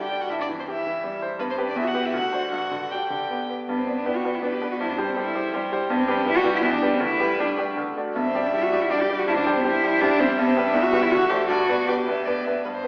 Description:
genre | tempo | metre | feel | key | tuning
quick classical-period movement for piano trio | 161 BPM | 3/4 | rubato | G major | A4 = 440 Hz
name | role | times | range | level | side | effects
warm violin | melody | 0.0-12.9 s | G4 to G5 | -31 LUFS | equal | none
dark cello | second line | 0.0-12.5 s | B3 to G4 | -27 LUFS | equal | none
bright grand piano | accompaniment | 0.0-12.9 s | D2 to D5 | -27 LUFS | equal | none
room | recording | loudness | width
wet recital hall reverb, RT60 1.4 s | recorded in a church or concert hall, AM radio sound | -23 LUFS | mono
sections
0.0-3.7 A section; 3.7-12.6 B section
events
none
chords
0.3 C/G; 1.4 G; 1.8 Em; 2.1 D7; 2.5 G; 4.8 C/G; 5.9 G; 6.6 Em; 7.0 G/D; 7.8 D; 8.2 G5; 9.3 C/G; 10.4 G; 10.7 Em; 11.1 D7; 11.5 G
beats
| 0.30 0.67 1.03 | 1.40 1.76 2.13 | 2.52 2.91 3.30 | 3.68 4.06 4.43 | 4.80 5.17 5.53 | 5.89 6.26 6.63 | 7.01 7.39 7.77 | 8.15 8.53 8.91 | 9.28 9.65 10.02 | 10.38 10.74 11.11 | 11.49 11.88 12.26 | 12.64

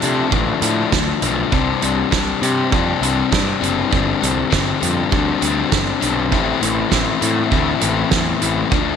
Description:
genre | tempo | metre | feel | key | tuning
indie rock | 100 BPM | 4/4 | straight | unclear | A4 = 440 Hz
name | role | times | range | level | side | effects
crunchy overdriven guitar | riff | 0.0-9.0 s | G2 to E4 | -18 LUFS | left 8 dB | none
fuzz picked electric bass | bass | 0.0-8.9 s | F#1 to C3 | -22 LUFS | right 2 dB | overdrive
loose indie drum kit | drums | 0.0-8.9 s | hi-hat, kick drum, snare drum | -21 LUFS | right 5 dB | none
room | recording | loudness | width
light reverb, small room ambience | 1960s-style stereo, faint mains hum | -15 LUFS | side -7 dB against mid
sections
0.0-9.0 A section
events
none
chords
0.0 Dm7; 1.5 Csus2; 3.9 Gsus4; 6.3 Am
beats
0.32 0.92 | 1.52 2.12 2.72 3.32 | 3.92 4.52 5.12 5.72 | 6.33 6.92 7.53 8.13 | 8.73

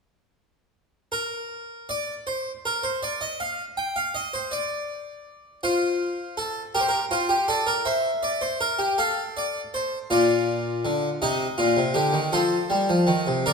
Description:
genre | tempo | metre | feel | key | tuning
classical, baroque-style 3-part fugue for harpsichord | 54 BPM (dotted quarters) | 6/8 | straight | unclear | A4 = 440 Hz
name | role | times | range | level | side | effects
harpsichord | solo | 1.1-13.5 s | Bb2 to G5 | -22 LUFS | equal | none
room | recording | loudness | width
wet recital hall reverb, RT60 1.5 s | recorded in a church or concert hall | -22 LUFS | side -5 dB against mid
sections
1.1-13.5 A section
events
none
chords
1.1 N.C.; 5.6 F; 6.8 Gm7; 7.9 C7; 9.0 F/A; 10.1 Bb; 11.2 Cm7; 12.3 F7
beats
| 1.12 2.27 | 3.39 4.51 | 5.63 6.75 | 7.87 8.99 | 10.11 11.22 | 12.34 13.46

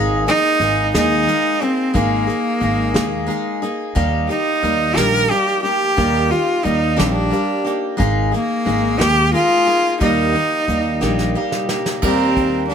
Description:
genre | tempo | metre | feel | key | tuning
acoustic folk duo or small band | 60 BPM (dotted quarters) | 6/8 | straight | Eb major | A4 = 440 Hz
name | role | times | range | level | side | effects
picked steel-string acoustic guitar | accompaniment | 0.0-12.7 s | Eb3 to Ab4 | -21 LUFS | left 1 dB | none
upright bass | bass | 0.0-12.7 s | Ab1 to Eb2 | -21 LUFS | right 1 dB | none
bright cello | melody | 0.3-12.7 s | Bb3 to Bb4 | -17 LUFS | equal | plate reverb
soft brush drum kit | drums | 0.3-12.7 s | crash cymbal, hi-hat, kick drum, snare drum | -24 LUFS | equal | none
mandolin | arpeggios | 12.0-12.7 s | Bb4 | -22 LUFS | right 6 dB | none
room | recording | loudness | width
light reverb | none | -15 LUFS | side -7 dB against mid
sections
0.0-12.0 A section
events
drum fill 11.0-12.0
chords
0.0 Absus2; 4.0 Eb; 8.0 Absus2; 10.0 Eb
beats
0.94 | 1.95 2.96 | 3.96 4.97 | 5.98 6.99 | 8.00 9.00 | 10.01 11.02 | 12.03

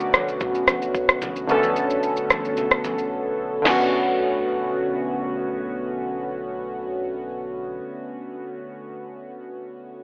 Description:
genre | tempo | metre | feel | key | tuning
amapiano | 111 BPM | 4/4 | straight | B minor | A4 = 440 Hz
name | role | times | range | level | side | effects
warm analog keys | accompaniment | 0.0-10.0 s | D3 to A4 | -26 LUFS | equal | chorus, phaser
sub bass with octave | bass | 0.0-7.8 s | B1 | -49 LUFS | equal | tube saturation
afro-pop drum kit | drums | 0.0-3.8 s | crash cymbal, kick drum, rim click, shaker, snare drum | -23 LUFS | equal | none
congas | percussion | 0.1-3.9 s | none | -38 LUFS | equal | none
room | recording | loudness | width
little or no reverb | dry, gritty hardware recording, cassette tape, telephone sound | -24 LUFS | mono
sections
0.0-3.7 A section; 3.7-8.0 B section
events
break 3.1-3.7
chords
0.0 Bm9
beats
0.41 0.95 | 1.49 2.03 2.57 3.11 | 3.65 4.19 4.73 5.27 | 5.81 6.35 6.89 7.43

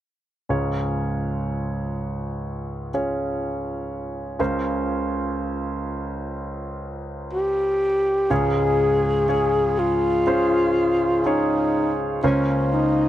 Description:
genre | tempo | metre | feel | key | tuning
pop | 61 BPM | 4/4 | straight | unclear | A4 = 440 Hz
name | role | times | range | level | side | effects
warm concert grand piano | accompaniment | 0.5-13.1 s | Db2 to Db5 | -24 LUFS | right 1 dB | none
breathy alto saxophone | melody | 7.3-13.1 s | Db4 to Ab4 | -20 LUFS | left 1 dB | none
warm French horn section | sustained chords | 8.3-13.1 s | Db3 to C5 | -30 LUFS | left 2 dB | none
room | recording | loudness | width
light reverb | dry, close 1970s-style studio recording | -20 LUFS | side -12 dB against mid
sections
0.5-8.3 A section; 8.3-13.1 B section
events
none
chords
0.5 Db; 4.4 Bbmadd9/Db; 8.3 Db; 12.2 Bbmadd9/Db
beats
| 0.49 1.48 2.45 3.42 | 4.39 5.37 6.34 7.32 | 8.31 9.29 10.28 11.25 | 12.23

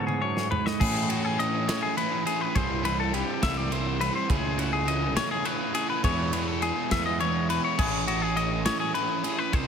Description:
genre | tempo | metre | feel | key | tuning
math rock and midwest emo | 69 BPM (dotted quarters) | 6/8 | straight | unclear | A4 = 445 Hz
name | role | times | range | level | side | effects
twangy electric guitar | accompaniment | 0.0-2.5 s | E2 to G#4 | -36 LUFS | right 11 dB | wide subtle chorus, slapback echo
clean electric guitar | arpeggios | 0.0-9.7 s | F#4 to E5 | -28 LUFS | left 5 dB | digital delay, slapback echo
fuzz picked electric bass | bass | 0.0-9.7 s | A1 to A2 | -31 LUFS | equal | overdrive
modern studio drum kit | drums | 0.1-9.7 s | crash cymbal, kick drum, ride cymbal, snare drum, toms | -31 LUFS | right 1 dB | none
overdriven semi-hollow guitar | riff | 0.8-9.7 s | C3 to E4 | -30 LUFS | right 4 dB | none
room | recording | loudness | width
moderate lush hall reverb, RT60 2.8 s | big arena sound | -24 LUFS | side -7 dB against mid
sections
0.8-9.7 A section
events
drum fill 0.0-0.8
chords
0.0 E6; 0.8 Amaj9; 2.5 Cmaj7; 4.3 Amaj9/C#; 6.0 E6; 7.8 Amaj9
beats
| 0.80 1.67 | 2.55 3.42 | 4.29 5.17 | 6.04 6.91 | 7.79 8.66 | 9.54

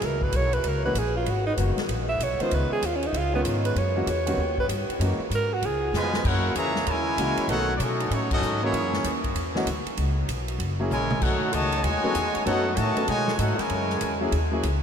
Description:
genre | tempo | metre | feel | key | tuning
jazz, big band swing | 193 BPM | 4/4 | swing 64% on 8ths | unclear | A4 = 440 Hz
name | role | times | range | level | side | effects
clear alto saxophone | melody | 0.0-6.2 s | B3 to E5 | -28 LUFS | right 2 dB | none
mellow saxophone section | sustained chords | 0.0-6.3 s | D#3 to G4 | -37 LUFS | left 2 dB | none
upright bass | bass | 0.0-14.8 s | F#1 to B2 | -28 LUFS | equal | none
swinging big-band drum kit | drums | 0.0-14.7 s | crash cymbal, hi-hat, kick drum, ride cymbal, snare drum, toms | -33 LUFS | equal | none
bright grand piano | accompaniment | 0.8-14.6 s | D#3 to A4 | -31 LUFS | left 1 dB | none
clear trumpet section | melody | 6.0-14.2 s | A3 to A#5 | -27 LUFS | left 1 dB | none
brilliant trombone section | second line | 6.0-14.2 s | A2 to F#4 | -30 LUFS | right 2 dB | none
room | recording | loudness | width
moderate huge ambient reverb, RT60 8.4 s | in a vast, echoing space | -22 LUFS | side -7 dB against mid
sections
0.0-6.2 A section; 6.2-14.8 B section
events
alto saxophone solo 0.0-6.2; drum fill 5.9-6.2, 10.9-11.2; band accent 8.3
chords
0.0 F#9; 1.3 G#m7; 2.5 C#9; 3.8 F#9; 4.4 D#aug7; 5.0 F#9; 5.6 C#9; 6.2 F#9; 7.5 B9; 8.7 F#9; 10.0 Bsus2; 10.6 F#9; 11.2 B9; 13.7 F#9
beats
| 0.02 0.33 0.64 0.95 | 1.27 1.58 1.89 2.20 | 2.51 2.83 3.14 3.45 | 3.76 4.07 4.38 4.69 | 5.00 5.32 5.63 5.94 | 6.25 6.56 6.87 7.18 | 7.49 7.80 8.11 8.42 | 8.73 9.04 9.35 9.66 | 9.97 10.28 10.59 10.90 | 11.21 11.53 11.84 12.15 | 12.46 12.77 13.08 13.39 | 13.70 14.01 14.32 14.63

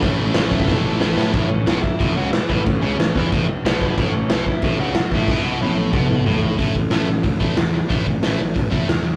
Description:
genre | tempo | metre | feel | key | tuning
punk rock | 183 BPM | 4/4 | straight | A major | A4 = 440 Hz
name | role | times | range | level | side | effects
overdriven electric guitar | melody | 0.0-6.4 s | A3 to F#5 | -32 LUFS | equal | delay
distorted electric guitar | riff | 0.0-9.2 s | A2 to A3 | -26 LUFS | equal | overdrive
fuzz picked electric bass | bass | 0.0-9.1 s | E1 to A2 | -26 LUFS | equal | overdrive
raw garage drum kit | drums | 0.0-9.0 s | crash cymbal, hi-hat, kick drum, snare drum, toms | -22 LUFS | equal | none
room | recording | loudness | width
light reverb | rough rehearsal-room recording, tube saturation | -19 LUFS | mono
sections
0.0-1.3 A section; 1.3-6.6 B section; 6.6-9.2 C section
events
drum fill 0.7-1.3, 5.3-6.6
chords
0.0 A; 6.6 A5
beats
| 0.03 0.36 0.69 1.02 | 1.35 1.68 2.00 2.33 | 2.66 2.99 3.32 3.65 | 3.97 4.30 4.63 4.96 | 5.28 5.61 5.94 6.27 | 6.59 6.92 7.25 7.58 | 7.91 8.23 8.56 8.89

